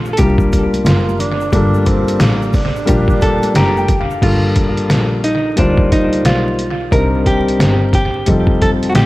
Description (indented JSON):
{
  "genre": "hip hop, jazz-hop",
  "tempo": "89 BPM",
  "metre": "4/4",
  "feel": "swing 65% on 16ths",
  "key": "G minor",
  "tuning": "A4 = 440 Hz",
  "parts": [
    { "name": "hollow-body jazz guitar", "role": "melody", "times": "0.0-9.1 s", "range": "D4 to Bb4", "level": "-19 LUFS", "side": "right 1 dB", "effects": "analog delay" },
    { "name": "warm double bass", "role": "bass", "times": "0.0-9.1 s", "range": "F1 to D2", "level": "-18 LUFS", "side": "equal", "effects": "none" },
    { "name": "congas and egg shaker", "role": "percussion", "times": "0.1-4.2 s", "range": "none", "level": "-29 LUFS", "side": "right 2 dB", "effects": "analog delay" },
    { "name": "warm baby grand piano", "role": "accompaniment", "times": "0.2-9.1 s", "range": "G3 to Bb5", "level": "-17 LUFS", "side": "left 2 dB", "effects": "analog delay" },
    { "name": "trip hop sampler-style drum kit", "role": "drums", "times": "0.2-9.1 s", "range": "crash cymbal, hi-hat, kick drum, snare drum", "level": "-16 LUFS", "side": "equal", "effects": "overdrive, analog delay" },
    { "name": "breathy tenor saxophone", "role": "second line", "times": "0.9-3.9 s", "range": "Bb3 to F4", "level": "-22 LUFS", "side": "right 4 dB", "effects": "none" }
  ],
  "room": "light reverb, studio ambience",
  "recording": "echo-heavy mix, vinyl crackle",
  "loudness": "-11 LUFS",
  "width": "side -18 dB against mid",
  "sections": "0.0-4.2 A section; 4.2-9.1 A section",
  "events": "grand piano fill 3.2-4.2",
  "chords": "0.0 Gm7; 6.9 Cm7; 8.3 F7"
}